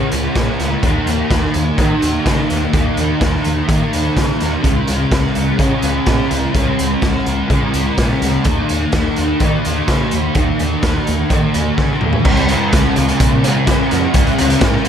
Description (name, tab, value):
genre	rock, shoegaze and dream pop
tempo	126 BPM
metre	4/4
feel	straight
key	unclear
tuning	A4 = 440 Hz
part	thick fuzz guitar	riff	0.0-14.9 s	Db3 to Eb4	-16 LUFS	equal	distortion, ensemble chorus
part	growling fingered electric bass	bass	0.0-14.9 s	Db2 to Eb3	-21 LUFS	equal	overdrive
part	raw garage drum kit	drums	0.1-14.9 s	crash cymbal, hi-hat, kick drum, snare drum, toms	-18 LUFS	equal	none
room	light reverb, small room ambience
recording	none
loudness	-13 LUFS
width	side -8 dB against mid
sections	0.0-12.3 A section; 12.3-14.9 A section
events	drum fill 11.8-12.3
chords	0.0 Db5; 0.8 Eb5; 4.6 Db5; 8.5 Eb5; 12.3 Db5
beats	0.36 | 0.83 1.31 1.79 2.26 | 2.74 3.22 3.69 4.17 | 4.65 5.12 5.60 6.08 | 6.55 7.03 7.51 7.98 | 8.46 8.94 9.41 9.89 | 10.36 10.84 11.31 11.79 | 12.26 12.73 13.21 13.68 | 14.15 14.62